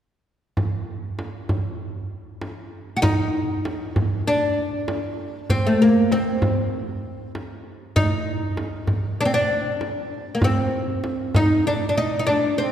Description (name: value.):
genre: Arabic maqam ensemble.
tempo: 98 BPM.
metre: 4/4.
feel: straight.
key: C minor.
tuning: A4 = 441 Hz.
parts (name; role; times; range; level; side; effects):
frame drum; percussion; 0.6-12.4 s; none; -25 LUFS; right 1 dB; none.
oud; melody; 3.0-12.7 s; A3 to F#4; -21 LUFS; left 1 dB; none.
room: wet concert hall reverb, RT60 2.5 s.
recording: recorded in a church or concert hall.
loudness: -20 LUFS.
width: side -10 dB against mid.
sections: 0.6-3.0 A section; 3.0-12.7 B section.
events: none.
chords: none.